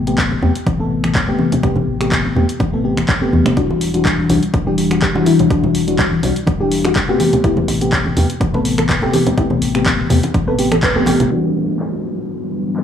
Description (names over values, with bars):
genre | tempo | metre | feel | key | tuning
deep house | 124 BPM | 4/4 | swing 54% on 16ths | E minor | A4 = 440 Hz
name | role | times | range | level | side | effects
mellow FM electric piano | stabs | 0.0-12.8 s | C3 to A4 | -17 LUFS | left 2 dB | chorus, phaser, sidechain pumping, tape echo
warm sub bass | bass | 0.0-11.3 s | D1 to E2 | -22 LUFS | left 1 dB | tube saturation, sidechain pumping
punchy analog drum machine | drums | 0.1-12.8 s | crash cymbal, finger snaps, handclaps, hi-hat | -22 LUFS | equal | low-pass filter on hats, low-pass filter on snare, low-pass filter on cymbals, low-pass filter on room
electronic kick drum | drums | 0.2-10.9 s | none | -20 LUFS | equal | none
congas | percussion | 0.3-11.3 s | none | -21 LUFS | right 1 dB | none
soft round pluck | arpeggios | 3.6-11.1 s | D4 to B4 | -22 LUFS | left 1 dB | lush chorus, sidechain pumping, tape echo
deep dark ambient pad | sustained chords | 12.0-12.8 s | G3 to B4 | -24 LUFS | left 3 dB | chorus, built-in reverb, sidechain pumping
downlifter | sound effects | 11.3-12.8 s | none | -24 LUFS | left 1 dB | none
room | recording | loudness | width
light reverb, digital ambience | dry, gritty hardware recording, low-pass filter, small room reverb, faint mains hum | -13 LUFS | side -8 dB against mid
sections
0.0-11.3 A section; 11.3-12.8 B section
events
band accent 10.8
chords
0.0 Am9; 3.6 Em9; 7.2 Am9; 11.3 Em9